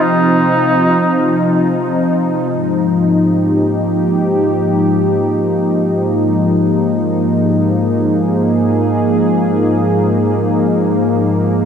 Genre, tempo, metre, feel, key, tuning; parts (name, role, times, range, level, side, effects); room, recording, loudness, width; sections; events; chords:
ambient; free time; Ab major; A4 = 440 Hz
warm flugelhorn; melody; 0.0-1.7 s; Eb4; -18 LUFS; right 1 dB; ping-pong delay
warm analog pad; sustained chords; 0.0-11.7 s; Ab2 to Ab4; -12 LUFS; equal; chorus
wet huge ambient reverb, RT60 8.9 s; -12 LUFS; side -7 dB against mid
0.0-2.5 A section; 2.5-11.7 B section
0.0 Cm; 2.5 Abmaj9; 7.5 Fm/Ab